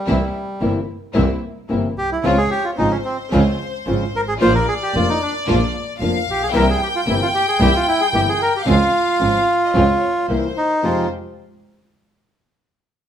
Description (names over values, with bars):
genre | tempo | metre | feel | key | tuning
tango | 112 BPM | 4/4 | rubato | F minor | A4 = 440 Hz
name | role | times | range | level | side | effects
bandoneon | melody | 0.0-11.1 s | G3 to C5 | -19 LUFS | right 1 dB | none
flamenco guitar | accompaniment | 0.1-11.1 s | F2 to G4 | -22 LUFS | left 2 dB | none
warm studio string section | stabs | 0.1-11.1 s | Ab3 to G4 | -27 LUFS | equal | none
clear double bass | bass | 0.1-11.1 s | F1 to F2 | -21 LUFS | right 2 dB | none
warm studio violin section | second line | 2.2-11.1 s | C5 to G5 | -23 LUFS | left 3 dB | none
room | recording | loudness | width
light reverb | minimal, uncompressed stereo recording | -16 LUFS | side -9 dB against mid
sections
0.0-10.8 A section; 10.8-13.0 B section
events
none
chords
0.1 C7; 2.2 Dbmaj7; 4.4 Bb; 6.5 C7; 8.7 Dbmaj7; 10.3 C7; 10.8 Fmadd9